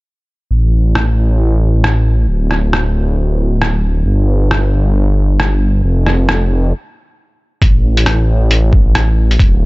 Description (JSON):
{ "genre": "future garage", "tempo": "135 BPM", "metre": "4/4", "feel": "swing 61% on 16ths", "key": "unclear", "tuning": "A4 = 441 Hz", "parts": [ { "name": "swelling detuned saw bass", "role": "bass", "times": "0.5-9.7 s", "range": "D1 to A1", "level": "-12 LUFS", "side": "equal", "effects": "sidechain pumping" }, { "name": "lo-fi sampler-style drum kit", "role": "drums", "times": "1.0-9.5 s", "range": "hi-hat, rim click", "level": "-18 LUFS", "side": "equal", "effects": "none" }, { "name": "electronic kick drum", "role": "drums", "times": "7.6-9.5 s", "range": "none", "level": "-10 LUFS", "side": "equal", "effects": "none" } ], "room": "little or no reverb", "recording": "dry, gritty hardware recording, transformer saturation, nothing above 7.9 kHz", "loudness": "-11 LUFS", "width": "side -22 dB against mid", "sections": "0.5-7.6 A section; 7.6-9.7 B section", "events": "stop 6.7-7.6", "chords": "none" }